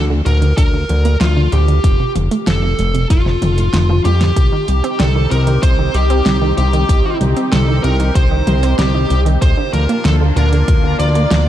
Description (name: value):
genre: synthwave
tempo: 95 BPM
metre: 4/4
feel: straight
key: C dorian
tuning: A4 = 441 Hz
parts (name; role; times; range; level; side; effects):
- smooth overdriven lead guitar; melody; 0.0-11.5 s; F4 to D5; -20 LUFS; equal; tape echo, shimmer reverb
- analog pluck; arpeggios; 0.0-11.4 s; A2 to C4; -21 LUFS; right 3 dB; chorus, tape echo, shimmer reverb
- fat analog bass; bass; 0.0-11.5 s; F1 to F2; -14 LUFS; equal; sidechain pumping
- pop drum kit; drums; 0.3-11.4 s; hi-hat, snare drum, toms; -21 LUFS; left 1 dB; small room ambience
- electronic kick drum; drums; 0.6-10.8 s; none; -14 LUFS; equal; small room ambience
- lush unison pad; sustained chords; 4.4-11.5 s; Bb3 to G4; -23 LUFS; equal; chorus, phaser, sidechain pumping, shimmer reverb
room: light reverb, digital ambience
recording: dark, warm production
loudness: -12 LUFS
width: side -12 dB against mid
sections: 0.0-11.5 A section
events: filter sweep on synth arpeggio sound 0.0-11.5; drum fill 4.0-4.4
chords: 0.0 Bb/D; 1.8 F; 4.4 Cm; 9.4 Bb/D